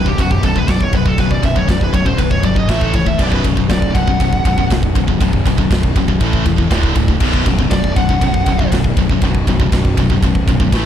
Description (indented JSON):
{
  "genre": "heavy metal",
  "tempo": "120 BPM",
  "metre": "4/4",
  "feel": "straight",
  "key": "B minor",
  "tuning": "A4 = 440 Hz",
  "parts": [
    { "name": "high-gain lead guitar", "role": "melody", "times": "0.0-4.7, 7.7-8.7 s", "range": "F#4 to F#5", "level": "-21 LUFS", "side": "equal", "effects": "distortion, tape echo" },
    { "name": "crunchy overdriven guitar", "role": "riff", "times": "0.0-10.9 s", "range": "B1 to A3", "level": "-22 LUFS", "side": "right 1 dB", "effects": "none" },
    { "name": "heavy high-gain guitar", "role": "riff", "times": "0.0-10.9 s", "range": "B1 to A3", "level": "-19 LUFS", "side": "left 10 dB", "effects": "distortion" },
    { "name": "heavy high-gain guitar", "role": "riff", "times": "0.0-10.9 s", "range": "B1 to A3", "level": "-23 LUFS", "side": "right 13 dB", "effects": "distortion" },
    { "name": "fuzz fingered electric bass", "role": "bass", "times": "0.0-10.9 s", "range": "B0 to A1", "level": "-18 LUFS", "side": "right 1 dB", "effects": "overdrive" },
    { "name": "tight metal drum kit", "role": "drums", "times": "0.1-10.8 s", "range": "crash cymbal, kick drum, ride cymbal, snare drum", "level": "-17 LUFS", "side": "equal", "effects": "none" }
  ],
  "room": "little or no reverb",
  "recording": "dark, warm production",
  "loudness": "-12 LUFS",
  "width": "side -10 dB against mid",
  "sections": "0.0-10.9 A section",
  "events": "lead electric guitar solo 0.0-10.9",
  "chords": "0.0 B5; 2.7 A5; 3.2 B5; 6.2 A5; 6.7 D5; 7.2 B5"
}